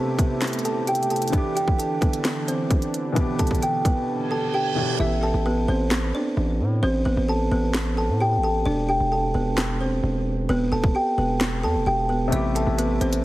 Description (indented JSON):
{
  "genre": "hip hop, trap",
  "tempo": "131 BPM",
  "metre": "4/4",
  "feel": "half-time",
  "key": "unclear",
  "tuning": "A4 = 440 Hz",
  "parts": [
    { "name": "buzzing kalimba", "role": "melody", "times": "0.0-13.2 s", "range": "B3 to A5", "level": "-24 LUFS", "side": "right 1 dB", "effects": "none" },
    { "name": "felt-muted upright piano", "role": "accompaniment", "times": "0.0-5.0, 12.3-13.2 s", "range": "B2 to G4", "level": "-30 LUFS", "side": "left 2 dB", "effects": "none" },
    { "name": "warm analog pad", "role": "sustained chords", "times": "0.0-5.0 s", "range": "C3 to G4", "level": "-30 LUFS", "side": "right 2 dB", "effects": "chorus" },
    { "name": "downlifter and reverse cymbal", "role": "sound effects", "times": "0.0-5.0 s", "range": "none", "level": "-34 LUFS", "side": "right 6 dB", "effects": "none" },
    { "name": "trap drum kit", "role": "drums", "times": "0.2-13.2 s", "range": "handclaps, hi-hat, kick drum, snare drum", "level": "-24 LUFS", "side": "equal", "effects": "none" },
    { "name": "distorted 808-style bass", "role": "bass", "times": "5.0-13.2 s", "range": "E1 to A2", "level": "-24 LUFS", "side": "equal", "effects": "distortion" }
  ],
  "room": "little or no reverb",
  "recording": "heavily compressed radio sound",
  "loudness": "-20 LUFS",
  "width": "side -16 dB against mid",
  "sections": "0.0-5.0 A section; 5.0-13.2 B section",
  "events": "reverse cymbal 4.2-5.0; hi-hats muted 5.0-12.3",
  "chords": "0.0 Am7; 1.3 Em7; 5.0 Am; 8.7 Em; 12.3 Am7"
}